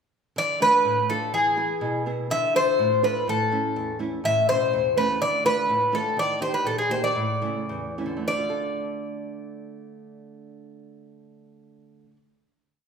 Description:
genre	greek folk, Greek bouzouki band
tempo	99-124 BPM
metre	2/4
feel	straight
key	D dorian sharp4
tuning	A4 = 437 Hz
part	Greek bouzouki	melody	0.4-12.2 s	G#4 to E5	-22 LUFS	left 1 dB	none
part	nylon-string guitar	accompaniment	0.4-12.3 s	E2 to A4	-30 LUFS	right 2 dB	none
room	wet large studio reverb, RT60 1.2 s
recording	band playing live in one room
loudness	-21 LUFS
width	side -6 dB against mid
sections	0.4-8.3 A section; 8.3-10.7 final chord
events	slowing down 6.2-8.3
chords	0.4 Dm; 1.3 E; 2.3 Dm; 3.3 A; 4.2 Aadd9; 5.2 Dm; 6.2 Eb; 7.2 A; 8.3 Dm

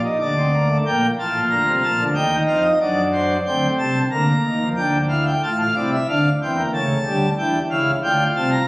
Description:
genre	classical, baroque-style 3-part fugue for pipe organ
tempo	92 BPM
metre	3/4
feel	straight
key	G minor, D minor from 4.8 s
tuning	A4 = 440 Hz
part	pipe organ, principal chorus	solo	0.0-8.7 s	A1 to Bb5	-17 LUFS	equal	none
room	wet concert hall reverb, RT60 2.1 s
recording	recorded on a phone in the room, studio reverb, compression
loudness	-17 LUFS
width	side -22 dB against mid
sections	0.9-4.8 A section; 4.8-8.7 B section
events	none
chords	0.2 D5; 0.9 Gm; 2.2 Ebadd9; 2.8 D7/F#; 4.1 Bbadd11/D; 4.8 Dm; 6.1 Em7b5/D; 6.7 A7/C#; 8.0 Dm

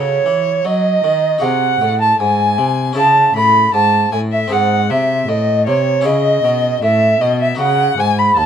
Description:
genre	classical, baroque-style sonata movement with continuo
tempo	78 BPM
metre	4/4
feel	straight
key	C# minor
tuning	A4 = 440 Hz
part	rich violin	melody	0.0-8.5 s	C#5 to B5	-20 LUFS	left 6 dB	none
part	mellow hollow concert flute	second line	0.0-8.5 s	C#5 to B5	-14 LUFS	right 3 dB	none
part	harpsichord	accompaniment	0.0-8.5 s	D#2 to A4	-22 LUFS	left 4 dB	none
part	warm cello	bass	0.0-8.5 s	D#2 to F#3	-19 LUFS	equal	none
room	light reverb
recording	minimal, uncompressed stereo recording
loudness	-12 LUFS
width	side -8 dB against mid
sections	0.0-8.5 A section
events	none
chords	0.0 D#m7b5/C#; 1.4 G#7; 3.0 C#m; 4.5 G#; 6.1 C#m; 7.6 D#m7

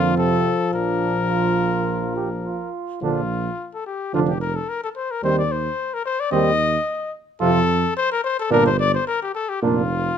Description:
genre	classical, brass quintet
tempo	108 BPM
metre	4/4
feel	straight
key	Bb major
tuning	A4 = 439 Hz
part	warm trumpet	melody	0.0-10.2 s	F4 to Eb5	-23 LUFS	left 5 dB	none
part	mellow flugelhorn	second line	0.0-9.8 s	Bb3 to G4	-26 LUFS	right 9 dB	none
part	clear trombone	accompaniment	0.0-9.8 s	Bb2 to Eb3	-26 LUFS	right 5 dB	none
part	mellow French horn	accompaniment	0.0-9.8 s	F3 to Bb3	-23 LUFS	left 2 dB	none
part	mellow tuba	bass	0.0-10.1 s	F1 to F2	-24 LUFS	right 5 dB	none
room	light reverb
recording	none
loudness	-19 LUFS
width	side -8 dB against mid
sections	0.0-3.0 A section; 3.0-10.2 B section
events	none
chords	0.2 F; 0.7 Bb; 5.2 Cm/Eb; 7.4 F; 8.5 Gm; 9.6 Bb/F

